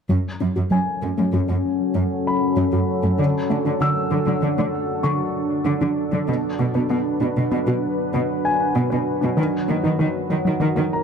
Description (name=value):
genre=cinematic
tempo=97 BPM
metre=5/4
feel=straight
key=F# minor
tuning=A4 = 441 Hz
part: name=deep dark ambient pad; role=sustained chords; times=0.9-11.0 s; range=F#3 to B4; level=-23 LUFS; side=left 1 dB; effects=chorus, built-in reverb, low-pass filter
part: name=analog pluck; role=arpeggios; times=0.1-10.9 s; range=D3 to B4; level=-26 LUFS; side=left 1 dB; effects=chorus, low-pass filter, tape echo
part: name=rich symphonic cello section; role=bass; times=0.1-10.8 s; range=F#2 to D#3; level=-23 LUFS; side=right 2 dB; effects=none
part: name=warm concert grand piano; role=texture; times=0.7-11.0 s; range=A#4 to E6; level=-28 LUFS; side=left 3 dB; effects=tape echo
room=moderate recital hall reverb, RT60 1.5 s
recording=close, detailed microphones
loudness=-19 LUFS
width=side -6 dB against mid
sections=0.1-11.0 A section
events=filter sweep 0.1-11.0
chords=0.1 F#m; 3.2 D; 6.3 Bm; 9.4 D#m